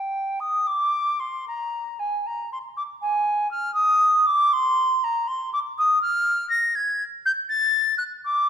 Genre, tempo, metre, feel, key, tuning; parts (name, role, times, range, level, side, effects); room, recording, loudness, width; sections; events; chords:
classical, baroque-style fantasia for unaccompanied flute; 79 BPM (dotted quarters); 6/8; uneven beats, rubato; Eb major; A4 = 440 Hz
silver concert flute; solo; 0.0-8.5 s; G5 to Bb6; -20 LUFS; equal
moderate recital hall reverb, RT60 1.6 s; minimal, uncompressed stereo recording; -20 LUFS; side -8 dB against mid
0.0-8.5 A section